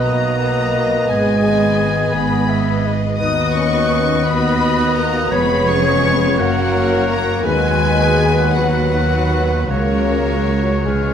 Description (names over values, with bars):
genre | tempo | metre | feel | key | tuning
classical | 51-58 BPM (dotted quarters) | 6/8 | rubato | F# major from 3.2 s | A4 = 440 Hz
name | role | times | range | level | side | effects
warm studio violin section | melody | 0.0-11.1 s | C#5 to D#6 | -24 LUFS | left 3 dB | none
clear oboe | second line | 0.0-11.1 s | B4 to D#5 | -26 LUFS | right 1 dB | none
mellow hollow silver concert flute | second line | 0.0-11.1 s | E#6 to G#6 | -26 LUFS | left 1 dB | none
rich studio violin section | second line | 0.0-11.1 s | G#4 to D#5 | -27 LUFS | left 2 dB | none
warm clarinet | second line | 0.0-11.1 s | A#4 to G#5 | -25 LUFS | left 1 dB | none
mellow bassoon | accompaniment | 0.0-11.1 s | G#3 to B3 | -24 LUFS | right 5 dB | none
rich studio viola section | accompaniment | 0.0-11.1 s | F#3 to G#4 | -26 LUFS | left 2 dB | none
warm French horn section | sustained chords | 0.0-11.1 s | C#3 to D#4 | -22 LUFS | left 2 dB | none
concert harp | arpeggios | 0.0-11.1 s | E#2 to B4 | -23 LUFS | left 6 dB | none
clear studio cello section | bass | 0.1-11.1 s | C#2 to B2 | -23 LUFS | right 2 dB | none
rich studio double bass section | bass | 0.1-11.1 s | E#1 to D#2 | -23 LUFS | right 3 dB | none
timpani | percussion | 10.9-11.1 s | C#3 | -29 LUFS | left 2 dB | none
room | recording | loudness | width
wet recital hall reverb, RT60 1.6 s | none | -14 LUFS | side -8 dB against mid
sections
0.0-11.1 A section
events
timpani fill 10.9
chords
0.0 B; 1.1 G#m; 3.2 B/D#; 5.3 C#7/E#; 6.4 F#; 7.4 B/D#; 9.7 F#/C#